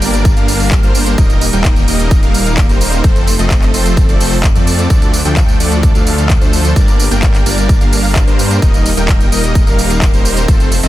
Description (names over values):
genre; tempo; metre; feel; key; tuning
EDM, festival progressive house; 129 BPM; 4/4; straight; unclear; A4 = 441 Hz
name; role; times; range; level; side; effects
supersaw chords; riff; 0.0-10.9 s; F3 to G5; -16 LUFS; equal; vintage 12-bit sampler grit, sidechain pumping, digital delay
wide detuned saw bass; bass; 0.0-10.9 s; Eb1 to G2; -16 LUFS; equal; chorus, sidechain pumping
big-room dance drum kit; drums; 0.0-10.9 s; handclaps, hi-hat, tambourine; -19 LUFS; right 1 dB; none
downlifter; sound effects; 0.0-1.2 s; none; barely audible; none; none
electronic kick drum; drums; 0.3-10.6 s; none; -11 LUFS; equal; none
room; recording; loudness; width
digital ambience; dense, heavily limited modern master; -9 LUFS; side -15 dB against mid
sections
0.0-10.9 A section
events
none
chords
0.0 Gm; 1.2 Eb; 3.0 F; 4.9 Dm; 6.8 Gm; 8.6 Eb